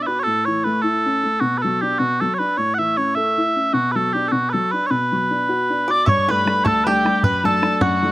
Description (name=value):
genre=celtic folk, Celtic jig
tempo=103 BPM (dotted quarters)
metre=6/8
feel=straight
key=B minor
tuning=A4 = 440 Hz
part: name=mellow small bagpipes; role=melody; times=0.0-8.1 s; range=F#4 to F#5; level=-19 LUFS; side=right 2 dB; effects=slapback echo
part: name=dark baby grand piano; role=accompaniment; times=0.0-8.1 s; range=D2 to A4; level=-22 LUFS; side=left 2 dB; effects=none
part: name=bluegrass banjo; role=second line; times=5.9-8.1 s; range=F#4 to D5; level=-27 LUFS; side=right 2 dB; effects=none
part: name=reedy tin whistle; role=second line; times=5.9-8.1 s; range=F#5 to D6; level=-23 LUFS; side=left 3 dB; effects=none
part: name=bodhran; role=percussion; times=6.1-7.9 s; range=none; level=-20 LUFS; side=equal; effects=none
room=little or no reverb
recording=recorded outdoors, with no room sound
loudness=-16 LUFS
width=side -17 dB against mid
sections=0.0-6.1 A section; 6.1-8.1 B section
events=none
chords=0.3 A; 1.4 Bm; 2.6 A; 3.7 Bm; 6.1 Gsus2; 7.2 D/F#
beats=| 0.25 0.83 | 1.42 2.00 | 2.58 3.16 | 3.75 4.33 | 4.91 5.49 | 6.07 6.65 | 7.23 7.81